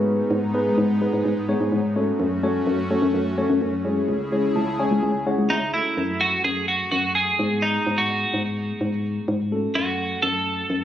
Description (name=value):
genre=pop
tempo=127 BPM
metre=4/4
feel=straight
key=F# dorian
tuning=A4 = 440 Hz
part: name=mellow tine electric piano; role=accompaniment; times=0.0-10.8 s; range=G#3 to A5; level=-24 LUFS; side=left 1 dB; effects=slow stereo tremolo
part: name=airy breathy pad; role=sustained chords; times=0.0-5.7 s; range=C#3 to G#4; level=-28 LUFS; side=left 1 dB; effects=chorus
part: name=organ-like FM bass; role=bass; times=0.0-10.8 s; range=C#2 to G#2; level=-25 LUFS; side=left 1 dB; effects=none
part: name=twelve-string electric guitar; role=melody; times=5.5-10.8 s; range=D#4 to A4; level=-22 LUFS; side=right 2 dB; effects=digital delay
room=light reverb, digital ambience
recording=recorded on a phone in the room, club reverb, compression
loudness=-20 LUFS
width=side -11 dB against mid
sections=0.0-5.7 A section; 5.7-10.8 B section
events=drop 0.0-5.7; tine electric piano fill 4.3-5.7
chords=0.0 G#m; 2.0 F#m; 3.9 C#m; 5.7 F#m; 7.4 G#m; 9.5 F#m